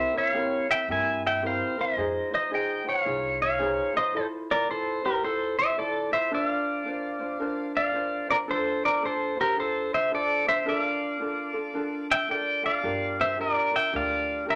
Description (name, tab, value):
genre	Hawaiian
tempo	110 BPM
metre	4/4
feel	swing 63% on 8ths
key	F minor, F major from 4.1 s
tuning	A4 = 437 Hz
part	pedal steel guitar	melody	0.0-14.6 s	G4 to Ab5	-27 LUFS	equal	none
part	ukulele	accompaniment	0.0-14.6 s	C4 to C5	-35 LUFS	equal	none
part	upright bass	bass	0.0-3.8, 12.8-14.6 s	G1 to G2	-43 LUFS	equal	none
room	moderate large studio reverb, RT60 0.9 s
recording	none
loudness	-27 LUFS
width	mono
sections	0.0-4.1 A section; 4.1-14.6 B section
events	none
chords	0.0 C7; 2.0 Fm7; 4.1 Fmaj7; 6.3 Bbadd9; 8.5 F6; 10.7 Bbmaj7; 12.8 Gm7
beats	0.34 0.89 1.43 | 1.97 2.52 3.06 3.60 | 4.14 4.69 5.23 5.77 | 6.32 6.86 7.40 7.94 | 8.49 9.03 9.57 10.12 | 10.66 11.21 11.75 12.29 | 12.84 13.38 13.93 14.47